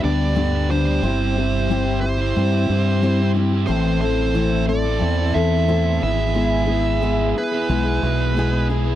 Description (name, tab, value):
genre	folk rock and heartland rock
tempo	90 BPM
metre	4/4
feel	straight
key	A minor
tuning	A4 = 441 Hz
part	dark smooth lead guitar	melody	0.0-8.7 s	B4 to E5	-25 LUFS	right 3 dB	overdrive
part	picked steel-string acoustic guitar	accompaniment	0.0-9.0 s	G2 to A4	-23 LUFS	left 5 dB	none
part	pedal harmonium	sustained chords	0.0-9.0 s	G4 to C6	-33 LUFS	right 6 dB	none
part	crunchy overdriven guitar	riff	0.0-9.0 s	G2 to A4	-25 LUFS	right 2 dB	none
part	deep dub fingered electric bass	bass	0.0-9.0 s	G1 to G2	-20 LUFS	equal	none
room	little or no reverb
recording	dry, close 1970s-style studio recording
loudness	-17 LUFS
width	side -12 dB against mid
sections	0.0-9.0 A section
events	none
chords	0.0 G; 1.0 C/G; 3.7 Am; 6.0 E/G#